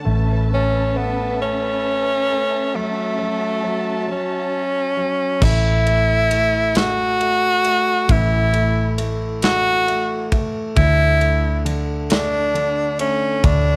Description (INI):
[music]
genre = six-eight pop ballad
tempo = 45 BPM (dotted quarters)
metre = 6/8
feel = straight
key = A major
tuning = A4 = 439 Hz
[part]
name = clear concert grand piano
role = accompaniment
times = 0.0-13.8 s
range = A2 to A3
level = -29 LUFS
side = equal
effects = none
[part]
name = warm studio string section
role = sustained chords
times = 0.0-5.4 s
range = C#4 to A5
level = -30 LUFS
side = equal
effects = none
[part]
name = vintage muted fingered electric bass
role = bass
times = 0.0-13.8 s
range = A1 to D2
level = -22 LUFS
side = equal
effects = none
[part]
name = clear tenor saxophone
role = melody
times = 0.5-13.8 s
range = A3 to F#4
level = -21 LUFS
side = equal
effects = none
[part]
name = modern studio drum kit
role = drums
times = 5.4-13.6 s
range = crash cymbal, kick drum, ride cymbal, snare drum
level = -25 LUFS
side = equal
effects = none
[sound]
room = light reverb, studio reverb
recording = none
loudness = -19 LUFS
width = mono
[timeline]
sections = 0.0-5.4 A section; 5.4-13.8 B section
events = break 2.7-5.4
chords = 0.1 Aadd9; 2.7 F#m7; 5.4 A5; 10.8 D5